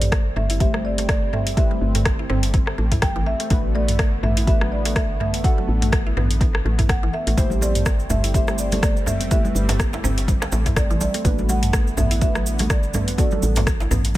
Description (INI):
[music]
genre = afro house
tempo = 124 BPM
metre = 4/4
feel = swing 56% on 16ths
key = A dorian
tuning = A4 = 439 Hz
[part]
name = marimba with soft mallets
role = melody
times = 0.0-14.1 s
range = D5 to G5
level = -29 LUFS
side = right 2 dB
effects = analog delay
[part]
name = warm analog pad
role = sustained chords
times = 0.0-14.2 s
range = D3 to C4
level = -32 LUFS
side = equal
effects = chorus, vintage 12-bit sampler grit, sidechain pumping
[part]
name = deep mellow chord stab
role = stabs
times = 0.0-14.2 s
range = A3 to C5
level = -31 LUFS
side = equal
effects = analog chorus, sidechain pumping, tape echo
[part]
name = woody FM bass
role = bass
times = 0.0-14.2 s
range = G1 to A1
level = -23 LUFS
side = equal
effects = sidechain pumping
[part]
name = afro-pop drum kit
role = drums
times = 0.0-14.2 s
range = hi-hat, rim click, toms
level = -25 LUFS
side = equal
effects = tape echo
[part]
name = mallet-like synth pluck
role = arpeggios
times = 0.1-14.0 s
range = E3 to E4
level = -31 LUFS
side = equal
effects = chorus, cassette tape, sidechain pumping, analog delay
[part]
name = electronic kick drum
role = drums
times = 0.1-14.2 s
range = none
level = -20 LUFS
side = equal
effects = overdrive
[part]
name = cabasa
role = percussion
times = 7.4-14.2 s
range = none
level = -33 LUFS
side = right 4 dB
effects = none
[part]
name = congas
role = percussion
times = 7.4-14.2 s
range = none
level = -29 LUFS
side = left 1 dB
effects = none
[part]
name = djembe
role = percussion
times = 7.4-14.0 s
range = none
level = -29 LUFS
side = right 1 dB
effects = tape echo
[sound]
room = studio ambience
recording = echo-heavy mix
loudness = -18 LUFS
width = side -16 dB against mid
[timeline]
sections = 0.0-14.2 A section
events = none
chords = 0.0 Am7; 3.5 Bm7/A; 7.4 Am7; 11.2 Bm7/A